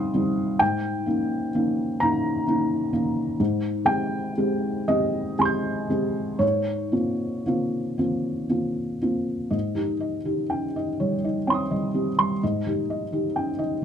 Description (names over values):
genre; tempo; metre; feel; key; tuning
neoclassical minimalist piano; 38-44 BPM (dotted quarters); 6/8; rubato; Ab major; A4 = 442 Hz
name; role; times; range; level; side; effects
felt-muted upright piano; solo; 0.0-13.8 s; Ab2 to G6; -22 LUFS; equal; none
room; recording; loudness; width
light reverb; dark, warm production; -22 LUFS; side -8 dB against mid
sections
0.0-9.5 A section; 9.5-13.8 B section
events
none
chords
0.0 Abmaj7; 0.6 Eb7/Ab; 3.4 Abmaj7; 6.4 Bbmadd9/Ab; 9.5 Abmaj7; 12.4 Eb7/Ab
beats
| 0.60 2.00 | 3.39 4.87 | 6.42 7.99 | 9.53 10.99 | 12.41 13.81